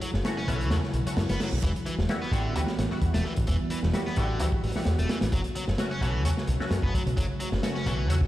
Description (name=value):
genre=breakbeat, breaks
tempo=130 BPM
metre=4/4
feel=swing 54% on 16ths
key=unclear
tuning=A4 = 440 Hz
part: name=warbly tape-like pad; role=sustained chords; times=0.0-8.3 s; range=C#3 to F#4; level=-33 LUFS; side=right 1 dB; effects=chorus, built-in reverb, sidechain pumping
part: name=distorted electric guitar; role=riff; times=0.0-8.1 s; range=D3 to C#4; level=-36 LUFS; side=equal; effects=overdrive, vintage 12-bit sampler grit, digital delay
part: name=band-passed chord stab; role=stabs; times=0.0-8.2 s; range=G3 to F#4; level=-36 LUFS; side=left 1 dB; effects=phaser, ensemble chorus, digital delay
part: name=crunchy breakbeat drum kit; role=drums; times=0.0-8.3 s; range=hi-hat, kick drum, snare drum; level=-30 LUFS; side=equal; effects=none
part: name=overdriven picked electric bass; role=bass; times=0.1-8.3 s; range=E1 to F#2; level=-27 LUFS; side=equal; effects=none
part: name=reverse cymbal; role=sound effects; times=0.9-1.6 s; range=none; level=-43 LUFS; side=right 5 dB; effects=none
room=light reverb, studio ambience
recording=played on a big sound system in a bare room, stone room reverb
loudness=-25 LUFS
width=side -14 dB against mid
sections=0.0-8.3 A section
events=reverse cymbal 0.9-1.6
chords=0.0 F#m; 1.6 Emadd9; 5.3 F#m